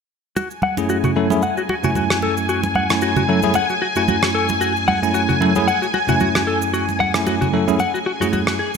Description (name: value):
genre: nu-disco, nu disco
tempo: 113 BPM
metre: 4/4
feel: swing 55% on 16ths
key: F# minor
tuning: A4 = 441 Hz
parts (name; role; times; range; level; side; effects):
- string machine, full ensemble; sustained chords; 0.4-8.8 s; G#5; -24 LUFS; equal; phaser, ensemble chorus
- direct-recorded clean electric guitar; riff; 0.4-8.7 s; F#3 to F#5; -22 LUFS; left 4 dB; analog chorus, low-pass filter, ping-pong delay
- cabasa and congas; percussion; 0.4-8.8 s; none; -25 LUFS; right 4 dB; none
- bell-like tine electric piano; accompaniment; 0.8-8.6 s; F#2 to G#5; -20 LUFS; equal; fast stereo tremolo, ping-pong delay
- rim click; drums; 2.1-8.6 s; none; -24 LUFS; right 2 dB; none
room: moderate lush hall reverb, RT60 2.4 s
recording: bright 1980s-style digital production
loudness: -16 LUFS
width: side -6 dB against mid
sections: 0.4-8.8 A section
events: filter sweep on clean electric guitar 0.4-8.8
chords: 0.4 F#m9